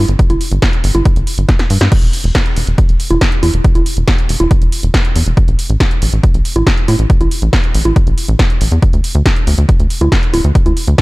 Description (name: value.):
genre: uplifting trance.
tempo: 139 BPM.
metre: 4/4.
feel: straight.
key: unclear.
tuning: A4 = 440 Hz.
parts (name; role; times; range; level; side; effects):
tight sequencer bass; bass; 0.0-11.0 s; D1 to A2; -13 LUFS; equal; sidechain pumping.
punchy analog drum machine; drums; 0.1-11.0 s; congas, crash cymbal, hi-hat, snare drum; -17 LUFS; right 1 dB; sidechain pumping on hats, sidechain pumping on perc, sidechain pumping on cymbals.
electronic kick drum; drums; 0.2-11.0 s; none; -12 LUFS; equal; none.
room: digital ambience.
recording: dark, warm production.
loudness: -10 LUFS.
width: side -21 dB against mid.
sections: 0.0-11.0 A section.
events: drum fill 1.5-1.9.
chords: none.